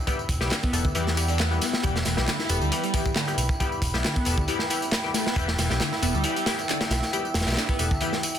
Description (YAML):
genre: breakbeat, breaks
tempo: 136 BPM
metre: 4/4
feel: swing 53% on 16ths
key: E minor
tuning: A4 = 437 Hz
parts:
  - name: dark analog pad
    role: sustained chords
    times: 0.0-8.4 s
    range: E4 to E6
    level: -32 LUFS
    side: right 1 dB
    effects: chorus, sidechain pumping
  - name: band-passed chord stab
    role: stabs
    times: 0.1-8.1 s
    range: G3 to A4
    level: -31 LUFS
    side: left 5 dB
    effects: chorus, phaser, cassette tape, tape echo
  - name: crunchy breakbeat drum kit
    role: drums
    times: 0.1-8.4 s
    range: hi-hat, kick drum, snare drum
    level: -27 LUFS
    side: equal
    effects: none
  - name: garage drum kit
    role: drums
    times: 0.1-8.4 s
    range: handclaps, hi-hat, tambourine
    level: -32 LUFS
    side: equal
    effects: none
  - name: picked electric bass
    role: bass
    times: 0.3-8.0 s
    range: E1 to E2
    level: -27 LUFS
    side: equal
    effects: none
  - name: overdriven synth lead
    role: riff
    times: 0.5-8.1 s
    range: D3 to E4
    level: -31 LUFS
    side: equal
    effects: phaser, tape echo
room: light reverb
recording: dense, heavily limited modern master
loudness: -22 LUFS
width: side -9 dB against mid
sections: 0.0-8.4 A section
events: kick drops out 8.0-8.4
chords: 0.0 Em